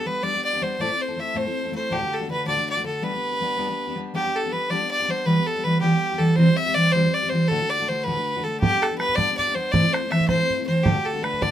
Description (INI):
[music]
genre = celtic folk, Celtic jig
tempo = 107 BPM (dotted quarters)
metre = 6/8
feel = straight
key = G major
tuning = A4 = 440 Hz
[part]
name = clear fiddle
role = melody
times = 0.0-11.5 s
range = G4 to E5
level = -23 LUFS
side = equal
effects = none
[part]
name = fingerpicked steel-string acoustic guitar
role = accompaniment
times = 0.0-11.5 s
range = D2 to A4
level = -24 LUFS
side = equal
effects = none
[part]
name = bodhran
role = percussion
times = 8.6-11.5 s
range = none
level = -25 LUFS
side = right 3 dB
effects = none
[sound]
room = light reverb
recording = minimal, uncompressed stereo recording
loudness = -20 LUFS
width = side -10 dB against mid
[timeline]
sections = 0.0-4.1 A section; 4.1-11.5 A section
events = none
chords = 0.0 G; 0.8 Am; 1.9 D; 3.0 G; 5.3 Em; 6.4 C; 7.5 D; 8.6 G; 9.7 Am; 10.9 D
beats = 0.23 | 0.79 1.35 | 1.91 2.47 | 3.03 3.58 | 4.14 4.70 | 5.26 5.82 | 6.38 6.94 | 7.50 8.06 | 8.62 9.18 | 9.73 10.29 | 10.85 11.41